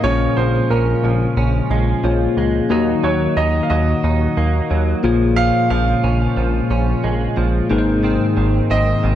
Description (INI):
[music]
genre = pop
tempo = 90 BPM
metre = 4/4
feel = straight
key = unclear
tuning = A4 = 441 Hz
[part]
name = clear grand piano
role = melody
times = 0.0-9.2 s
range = Bb4 to F5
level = -22 LUFS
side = right 4 dB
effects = digital delay
[part]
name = tine electric piano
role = accompaniment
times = 0.0-9.2 s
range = Ab2 to Eb5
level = -18 LUFS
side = left 3 dB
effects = phaser
[part]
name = brassy analog pad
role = sustained chords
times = 0.0-9.2 s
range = Bb2 to Gb4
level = -26 LUFS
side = equal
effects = chorus
[part]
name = direct-recorded clean electric guitar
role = riff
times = 0.0-9.2 s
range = Eb3 to Eb4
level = -24 LUFS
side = right 5 dB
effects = analog chorus, digital delay
[part]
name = chorused synth bass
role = bass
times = 0.0-9.2 s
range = Ab1 to Eb2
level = -19 LUFS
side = equal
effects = none
[sound]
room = light reverb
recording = dark, warm production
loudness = -15 LUFS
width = side -11 dB against mid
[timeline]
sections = 0.0-9.2 A section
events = none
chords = 0.0 Bbm7; 2.7 Ebm; 5.0 Bbm7; 7.7 Abadd9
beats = | 0.04 0.70 1.37 2.04 | 2.71 3.37 4.04 4.71 | 5.37 6.04 6.71 7.37 | 8.04 8.71